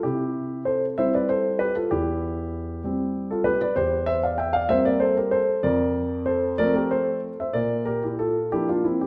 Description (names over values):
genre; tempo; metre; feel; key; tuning
classical-period piano sonatina; 64 BPM (dotted quarters); 6/8; straight; C major, F major from 3.8 s; A4 = 440 Hz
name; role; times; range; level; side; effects
warm concert grand piano; solo; 0.0-9.1 s; E2 to G5; -24 LUFS; equal; none
room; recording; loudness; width
wet recital hall reverb, RT60 1.5 s; none; -24 LUFS; mono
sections
0.0-9.1 A section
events
none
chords
0.0 C; 1.9 C/E; 3.8 C7/E; 5.6 F; 7.5 Bb